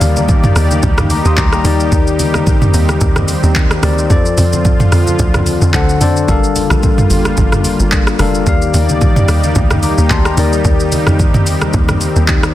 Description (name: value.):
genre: amapiano.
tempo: 110 BPM.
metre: 4/4.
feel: swing 55% on 16ths.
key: unclear.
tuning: A4 = 440 Hz.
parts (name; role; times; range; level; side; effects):
bell-like tine electric piano; accompaniment; 0.0-12.5 s; D3 to Eb6; -16 LUFS; left 4 dB; none.
warm analog pad; sustained chords; 0.0-12.5 s; D3 to D5; -19 LUFS; right 1 dB; chorus, sidechain pumping.
tight log drum bass; bass; 0.0-12.5 s; F1 to F2; -15 LUFS; equal; none.
deep house drum kit; drums; 0.0-12.5 s; handclaps, hi-hat, kick drum, rim click, shaker, toms; -14 LUFS; right 1 dB; none.
congas; percussion; 0.0-12.2 s; none; -21 LUFS; right 1 dB; none.
downlifter; sound effects; 0.0-1.9 s; none; -34 LUFS; right 1 dB; none.
room: little or no reverb.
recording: dense, heavily limited modern master.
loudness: -10 LUFS.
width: side -14 dB against mid.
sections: 0.0-12.5 A section.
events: none.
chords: 0.0 Ebmaj7; 4.1 Dm7/F; 5.7 D7; 6.3 Gm9; 8.5 Ebmaj7; 10.4 Cm7/Eb.